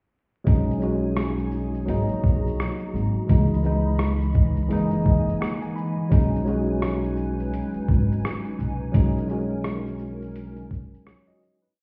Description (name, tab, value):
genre	lo-fi hip hop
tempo	85 BPM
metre	4/4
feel	swing 60% on 16ths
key	B major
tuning	A4 = 440 Hz
part	tine electric piano	accompaniment	0.4-11.8 s	E3 to B5	-28 LUFS	equal	overdrive, cassette tape
part	hollow soft pad	sustained chords	0.5-11.7 s	E3 to B5	-38 LUFS	equal	ensemble chorus
part	upright bass	bass	0.5-11.0 s	F#1 to C#2	-29 LUFS	equal	none
part	lo-fi sampler-style drum kit	drums	0.5-11.8 s	hi-hat, kick drum, rim click, shaker	-24 LUFS	equal	overdrive
room	light reverb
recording	heard muffled through a wall, stone room reverb, vinyl crackle, EQ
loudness	-24 LUFS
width	mono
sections	0.5-11.8 A section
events	tine electric piano fill 4.7-6.1; fade-out 8.9-11.8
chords	0.5 B6; 1.9 G#m9; 3.3 C#m9; 4.7 F#13; 6.1 B6